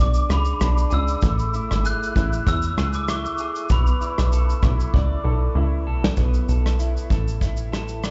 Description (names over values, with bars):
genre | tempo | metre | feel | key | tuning
indie pop, bedroom pop | 97 BPM | 4/4 | swing 55% on 16ths | B dorian | A4 = 443 Hz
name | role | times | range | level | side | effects
glockenspiel with soft plastic mallets | melody | 0.0-5.5 s | B5 to F#6 | -30 LUFS | equal | ensemble chorus, slapback echo
electric guitar through a small old amp | accompaniment | 0.0-8.1 s | A3 to D5 | -33 LUFS | equal | subtle chorus, vibrato effect, slapback echo
plucky analog bass | bass | 0.0-8.1 s | G#1 to E2 | -23 LUFS | equal | none
soft brush drum kit | drums | 0.1-8.1 s | hi-hat, kick drum, rim click, shaker, snare drum | -26 LUFS | equal | none
room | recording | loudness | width
little or no reverb | live gig heard through the venue's PA, club reverb, nothing above 7.8 kHz | -22 LUFS | mono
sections
0.0-6.2 A section; 6.2-8.1 B section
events
drum fill 4.9-6.2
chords
0.0 Bm69; 1.2 Amaj7; 3.7 Bm11; 6.2 Bm7